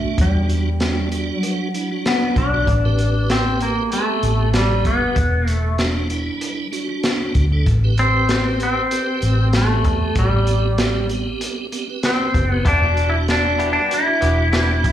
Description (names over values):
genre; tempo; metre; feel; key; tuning
straight-eighth soul blues; 96 BPM; 4/4; swing 55% on 16ths; E minor; A4 = 437 Hz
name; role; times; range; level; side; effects
clean lap steel guitar; melody; 0.0-14.9 s; G3 to E4; -20 LUFS; equal; none
tonewheel organ; accompaniment; 0.0-14.9 s; C3 to B4; -26 LUFS; right 4 dB; slow rotary speaker, overdrive, chorus vibrato, slapback echo
vintage muted fingered electric bass; bass; 0.0-14.9 s; E1 to E2; -19 LUFS; equal; none
crunchy breakbeat drum kit; drums; 0.2-14.9 s; hi-hat, kick drum, snare drum; -23 LUFS; equal; none
direct-recorded clean electric guitar; stabs; 12.7-14.9 s; E3 to G4; -27 LUFS; left 4 dB; slapback echo
room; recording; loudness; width
light reverb, small room reverb; live gig heard through the venue's PA, club reverb; -16 LUFS; side -11 dB against mid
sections
0.0-14.9 A section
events
none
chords
0.0 Em7; 2.7 Am7; 5.2 Em7; 7.7 Am7; 12.7 Em7